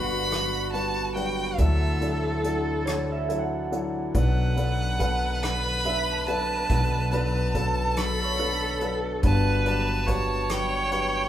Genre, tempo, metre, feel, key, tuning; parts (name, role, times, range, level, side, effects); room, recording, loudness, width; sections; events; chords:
acoustic folk-pop ballad; 47 BPM (dotted quarters); 6/8; straight; B minor; A4 = 441 Hz
warm violin; melody; 0.0-11.3 s; E5 to B5; -29 LUFS; right 1 dB
warm viola; second line; 0.0-11.3 s; F#4 to C#5; -31 LUFS; right 2 dB
dark upright piano; accompaniment; 0.0-11.3 s; G1 to F#5; -30 LUFS; left 2 dB
pedal harmonium; sustained chords; 0.0-11.3 s; D3 to B4; -38 LUFS; left 1 dB
electric guitar through a small old amp; arpeggios; 0.0-9.7 s; A4 to A5; -35 LUFS; right 3 dB; tremolo
upright bass; bass; 0.0-11.3 s; G1 to D2; -28 LUFS; equal
soft brush drum kit; drums; 0.3-11.1 s; hi-hat, kick drum, rim click; -30 LUFS; equal
moderate large studio reverb, RT60 1.0 s; band playing live in one room; -23 LUFS; side -11 dB against mid
0.0-11.3 A section
0.0 Gmaj7; 1.6 Dadd9; 4.2 Bm7; 9.2 Gmaj7